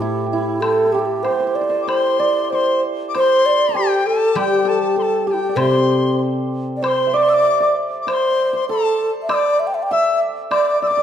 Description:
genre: chinese traditional, Chinese chamber ensemble.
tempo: 98 BPM.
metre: 2/4.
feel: rubato.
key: C gong mode.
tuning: A4 = 440 Hz.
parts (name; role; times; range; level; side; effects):
mellow low xiao; melody; 0.0-11.0 s; E4 to G5; -18 LUFS; right 1 dB; none.
hammered dulcimer; second line; 0.0-11.0 s; E4 to E5; -24 LUFS; right 4 dB; none.
guzheng; accompaniment; 0.0-1.2, 4.4-7.5 s; A2 to G3; -21 LUFS; left 3 dB; none.
woodblock; percussion; 0.6-10.7 s; none; -28 LUFS; left 4 dB; none.
bright reedy dizi; second line; 1.8-11.0 s; G5 to E6; -23 LUFS; left 6 dB; none.
room: moderate recital hall reverb, RT60 1.8 s.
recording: dark, warm production.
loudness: -15 LUFS.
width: side -9 dB against mid.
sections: 0.0-6.8 A section; 6.8-11.0 B section.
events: none.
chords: none.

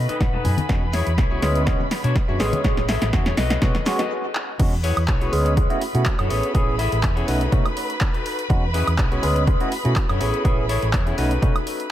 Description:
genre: filtered disco house.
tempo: 123 BPM.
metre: 4/4.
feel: swing 53% on 16ths.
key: E major.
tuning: A4 = 440 Hz.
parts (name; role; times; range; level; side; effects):
rich studio violin section; sustained chords; 0.0-11.9 s; B4 to B5; -32 LUFS; right 1 dB; sidechain pumping, low-pass filter.
clean electric guitar; riff; 0.0-11.9 s; C#4 to G#5; -28 LUFS; left 4 dB; sidechain pumping, low-pass filter, dub echo.
hollow-body short-scale fingered electric bass; bass; 0.0-11.5 s; A1 to B2; -23 LUFS; equal; sidechain pumping, low-pass filter.
punchy analog drum machine; drums; 0.1-11.9 s; crash cymbal, handclaps, hi-hat, snare drum, woodblock; -27 LUFS; right 1 dB; overdrive, sidechain pumping on hats, sidechain pumping on cymbals, sidechain pumping on perc.
maracas and congas; percussion; 0.1-4.1 s; none; -30 LUFS; left 4 dB; none.
electronic kick drum; drums; 0.2-11.5 s; none; -21 LUFS; equal; overdrive.
barky tine electric piano; accompaniment; 0.7-11.6 s; G#3 to G#4; -26 LUFS; right 1 dB; phaser, sidechain pumping, low-pass filter, dub echo.
room: light reverb, digital ambience.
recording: echo-heavy mix.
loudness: -18 LUFS.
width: side -12 dB against mid.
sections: 0.0-4.6 A section; 4.6-11.9 B section.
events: build-up 0.0-4.6; drum fill 0.0-4.1, 4.4; clean electric guitar fill 0.0-0.7; stop 4.1-4.6; drop 4.6-11.9.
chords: 0.0 B7; 0.7 E6; 1.7 Dmaj7; 2.4 Amaj7; 3.4 B7; 4.6 E6; 5.6 Dmaj7; 6.3 Amaj7; 7.3 B7; 8.5 E6; 9.5 Dmaj7; 10.2 Amaj7; 11.2 B7.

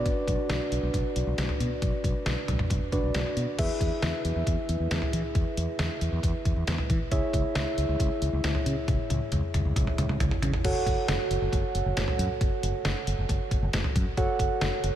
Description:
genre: synth-pop.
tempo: 136 BPM.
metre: 4/4.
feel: straight.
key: F# minor.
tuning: A4 = 438 Hz.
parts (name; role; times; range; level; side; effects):
muted felt-like synth keys; accompaniment; 0.0-15.0 s; D4 to F#5; -30 LUFS; right 2 dB; chorus.
mellow fretless electric bass; bass; 0.0-14.9 s; F#1 to E3; -29 LUFS; equal; none.
detuned 8-bit digital drum machine; drums; 0.1-14.9 s; crash cymbal, hi-hat, kick drum, snare drum, toms; -29 LUFS; equal; none.
room: moderate cathedral reverb, RT60 5.7 s.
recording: dreamy mix soaked in reverb.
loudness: -25 LUFS.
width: side -11 dB against mid.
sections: 0.0-3.6 A section; 3.6-10.6 B section; 10.6-15.0 C section.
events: drum fill 8.9-10.6.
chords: 0.0 Bm; 3.6 E; 7.1 C#m; 10.6 F#m.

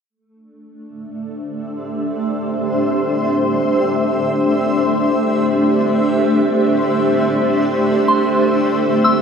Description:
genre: ambient.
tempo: free time.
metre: none.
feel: none.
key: C major.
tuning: A4 = 440 Hz.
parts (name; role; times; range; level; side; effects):
granular cloud pad; sustained chords; 1.0-9.2 s; A3 to E5; -15 LUFS; equal; built-in reverb.
soft synth bell; arpeggios; 8.1-9.2 s; C6 to E6; -18 LUFS; equal; chorus, phaser, ping-pong delay.
room: wet lush hall reverb, RT60 3.1 s.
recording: dreamy mix soaked in reverb.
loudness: -14 LUFS.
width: side -6 dB against mid.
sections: 0.1-9.2 A section.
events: none.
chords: 0.1 Cadd9.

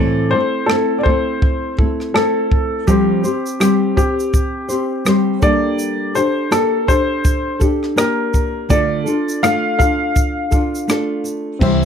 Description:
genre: acoustic pop.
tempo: 82 BPM.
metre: 4/4.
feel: swing 60% on 16ths.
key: unclear.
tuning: A4 = 442 Hz.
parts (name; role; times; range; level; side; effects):
warm upright piano; melody; 0.0-11.2 s; G4 to F5; -19 LUFS; left 2 dB; none.
nylon-string guitar; accompaniment; 0.0-11.8 s; A2 to C5; -18 LUFS; equal; none.
compact cocktail drum kit; drums; 0.7-11.8 s; crash cymbal, kick drum, rim click, shaker; -18 LUFS; equal; none.
overdriven reed electric piano; accompaniment; 11.6-11.8 s; C4 to E5; -22 LUFS; left 4 dB; none.
fingered electric bass; bass; 11.6-11.8 s; C2; -17 LUFS; equal; none.
room: light reverb.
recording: none.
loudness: -14 LUFS.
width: side -8 dB against mid.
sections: 0.0-11.6 A section.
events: none.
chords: 0.0 Am; 2.9 Fsus2; 5.4 Gmadd9; 8.7 Dm.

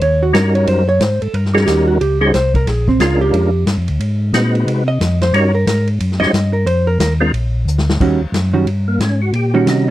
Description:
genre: soul jazz organ trio.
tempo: 180 BPM.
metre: 4/4.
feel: swing 62% on 8ths.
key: Eb mixolydian.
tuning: A4 = 440 Hz.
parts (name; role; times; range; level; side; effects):
vintage hollow-body jazz guitar; accompaniment; 0.0-9.9 s; Eb3 to Eb5; -16 LUFS; right 3 dB; none.
mellow tonewheel organ; bass; 0.0-9.9 s; Bb1 to C3; -16 LUFS; equal; chorus vibrato, slow rotary speaker.
vintage drum kit; drums; 0.0-9.8 s; crash cymbal, hi-hat, kick drum, ride cymbal, snare drum; -22 LUFS; left 1 dB; none.
percussive tonewheel organ; melody; 0.3-9.9 s; G3 to C5; -16 LUFS; equal; slow rotary speaker, chorus vibrato.
room: light reverb.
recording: dry, close 1970s-style studio recording.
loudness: -12 LUFS.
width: side -14 dB against mid.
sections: 0.0-8.0 A section; 8.0-9.9 A section.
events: hollow-body jazz guitar solo 0.0-8.0; drum fill 7.7-8.0; tonewheel organ solo 8.0-9.9.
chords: 0.0 Eb7#9; 2.7 Bb7#9; 4.0 Ab7#9; 5.3 Eb7#9; 6.7 Fm7; 7.3 Bb; 8.0 Eb7#9.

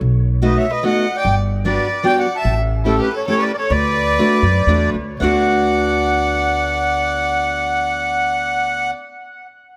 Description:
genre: musette waltz.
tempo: 106-150 BPM.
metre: 3/4.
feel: rubato.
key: D major.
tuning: A4 = 437 Hz.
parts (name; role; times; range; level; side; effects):
upright bass; bass; 0.0-8.9 s; G1 to F#2; -23 LUFS; equal; none.
accordion; melody; 0.4-8.9 s; A4 to A5; -21 LUFS; equal; light tremolo tuning, tape echo.
picked steel-string acoustic guitar; accompaniment; 0.4-8.9 s; G3 to G4; -23 LUFS; equal; none.
clear violin; second line; 0.5-8.9 s; E4 to E5; -27 LUFS; equal; none.
room: light reverb.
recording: close, detailed microphones.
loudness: -17 LUFS.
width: mono.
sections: 0.0-5.2 A section; 5.2-8.5 B section.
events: slowing down 2.5-5.2.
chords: 0.0 B7; 1.3 Gmaj7; 2.5 A7; 3.7 D6.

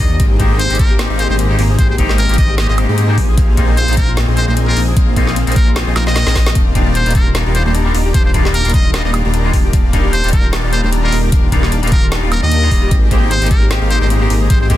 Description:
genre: future bass.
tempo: 151 BPM.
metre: 4/4.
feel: swing 55% on 16ths, half-time.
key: Eb major.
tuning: A4 = 440 Hz.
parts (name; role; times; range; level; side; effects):
trumpet with metal mute; melody; 0.0-14.7 s; Bb4 to Eb5; -21 LUFS; equal; sidechain pumping, ping-pong delay.
twangy electric guitar; accompaniment; 0.0-14.8 s; G3 to G4; -23 LUFS; left 3 dB; warbly pitch drift, sidechain pumping, digital delay.
Celtic harp; arpeggios; 0.0-14.8 s; C4 to Eb5; -25 LUFS; left 9 dB; sidechain pumping, digital delay.
dense compressed supersaw; riff; 0.0-14.8 s; Bb3 to Bb5; -22 LUFS; right 1 dB; sidechain pumping.
wide detuned saw bass; bass; 0.0-14.8 s; Eb1 to Ab2; -15 LUFS; equal; chorus, sidechain pumping.
electronic kick drum; drums; 0.0-14.8 s; none; -13 LUFS; equal; none.
trap drum kit; drums; 0.0-14.8 s; hi-hat, snare drum, woodblock; -23 LUFS; equal; none.
room: little or no reverb.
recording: dense, heavily limited modern master.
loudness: -11 LUFS.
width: side -14 dB against mid.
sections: 0.0-14.8 A section.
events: drum fill 6.0-6.6.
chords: 0.2 Abmaj9; 3.2 Bb9sus4; 6.6 Ebmaj9; 12.9 Abmaj9.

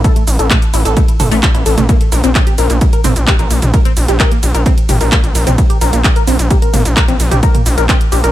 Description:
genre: driving peak-time techno.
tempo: 130 BPM.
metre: 4/4.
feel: straight.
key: A phrygian.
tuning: A4 = 440 Hz.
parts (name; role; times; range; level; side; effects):
tight sequenced synth; riff; 0.0-8.3 s; A3 to Bb4; -18 LUFS; left 1 dB; chorus, tube saturation, sidechain pumping, ping-pong delay.
gritty driven synth bass; bass; 0.0-8.3 s; G1 to Bb1; -13 LUFS; equal; sidechain pumping.
electronic kick drum; drums; 0.0-8.0 s; none; -12 LUFS; equal; none.
techno drum kit; drums; 0.0-8.3 s; handclaps, hi-hat, ride cymbal, shaker, toms; -17 LUFS; equal; sidechain pumping on hats, sidechain pumping on cymbals, sidechain pumping on perc, sidechain pumping on toms.
room: little or no reverb.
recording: none.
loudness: -9 LUFS.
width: side -14 dB against mid.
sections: 0.0-8.3 A section.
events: none.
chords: 0.0 A5; 1.9 N.C..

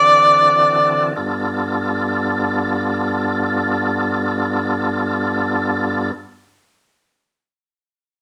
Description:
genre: blues.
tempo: free time.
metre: none.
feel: none.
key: G mixolydian.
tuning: A4 = 440 Hz.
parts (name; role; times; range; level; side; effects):
clear harmonica; melody; 0.0-1.2 s; D5; -13 LUFS; equal; overdrive.
tonewheel organ; sustained chords; 0.0-6.1 s; G2 to A4; -21 LUFS; equal; slow rotary speaker, overdrive, chorus vibrato.
room: moderate studio reverb, RT60 0.7 s.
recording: none.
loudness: -18 LUFS.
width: mono.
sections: 0.0-1.2 A section; 1.2-7.2 B section.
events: slowing down 0.0-1.2; harmonica solo 0.0-1.2.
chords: 0.0 D9; 1.2 G9.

